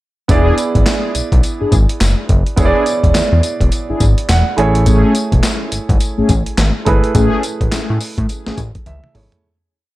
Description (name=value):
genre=R&B, new jack swing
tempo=105 BPM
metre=4/4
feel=swing 61% on 16ths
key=A major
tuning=A4 = 440 Hz
part: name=warm baby grand piano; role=accompaniment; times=0.3-9.5 s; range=A3 to G#5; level=-19 LUFS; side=right 3 dB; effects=tube saturation
part: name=mellow synth brass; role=stabs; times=0.3-8.6 s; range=A3 to G#4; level=-19 LUFS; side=left 2 dB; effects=chorus, digital delay
part: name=fat analog bass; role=bass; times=0.3-9.3 s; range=E1 to A2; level=-15 LUFS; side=equal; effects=none
part: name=dusty soul sampler-style drum kit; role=drums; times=0.3-9.4 s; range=handclaps, hi-hat, kick drum, snare drum, tambourine, toms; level=-16 LUFS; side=equal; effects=overdrive, gated reverb
room=little or no reverb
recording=none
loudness=-12 LUFS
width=side -17 dB against mid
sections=0.3-9.4 chorus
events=grand piano fill 4.0-4.9, 8.6-9.4; fade-out 7.1-9.4; drum fill 8.9-9.4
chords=0.3 E7; 4.6 Amaj7